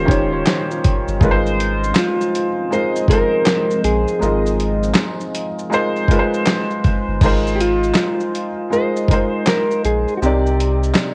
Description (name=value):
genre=lo-fi hip hop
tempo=80 BPM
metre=4/4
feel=swing 63% on 16ths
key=Ab major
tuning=A4 = 442 Hz
part: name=tine electric piano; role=second line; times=0.0-1.2 s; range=Eb4 to Db5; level=-29 LUFS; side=equal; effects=analog delay
part: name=felt-muted upright piano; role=accompaniment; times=0.0-11.1 s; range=C3 to Eb5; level=-22 LUFS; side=equal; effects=cassette tape
part: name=deep dark ambient pad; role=sustained chords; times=0.0-7.2 s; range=Eb3 to Db4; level=-32 LUFS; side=equal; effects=chorus, built-in reverb
part: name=soft dub sub bass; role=bass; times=0.0-10.9 s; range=Eb1 to C2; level=-23 LUFS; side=equal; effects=none
part: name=dusty soul sampler-style drum kit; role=drums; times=0.1-11.1 s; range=crash cymbal, handclaps, hi-hat, kick drum, shaker, snare drum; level=-20 LUFS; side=equal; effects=none
part: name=mellow electric guitar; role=melody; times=2.0-11.1 s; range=F4 to C5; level=-22 LUFS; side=equal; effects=harmonic tremolo, analog delay
room=light reverb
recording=worn, warbling old tape, cassette tape, warbly pitch drift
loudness=-18 LUFS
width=mono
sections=0.0-7.2 A section; 7.2-11.1 B section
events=none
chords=0.0 Eb13; 1.2 Ab69; 10.2 Cm7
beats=0.46 | 1.21 1.96 2.71 3.46 | 4.21 4.96 5.71 6.46 | 7.21 7.96 8.71 9.46 | 10.21 10.96